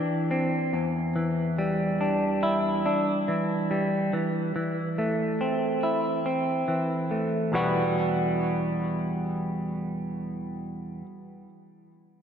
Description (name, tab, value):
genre	rock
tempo	71 BPM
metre	4/4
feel	straight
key	E minor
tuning	A4 = 440 Hz
part	semi-hollow electric guitar	arpeggios	0.0-11.1 s	E2 to G4	-25 LUFS	equal	tape echo, slapback echo
room	wet lush hall reverb, RT60 2.9 s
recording	big arena sound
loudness	-24 LUFS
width	side -8 dB against mid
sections	0.0-7.5 A section; 7.5-10.9 B section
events	none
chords	0.0 Cadd9/E; 0.7 G5/E; 4.1 Am/E; 7.5 Emadd9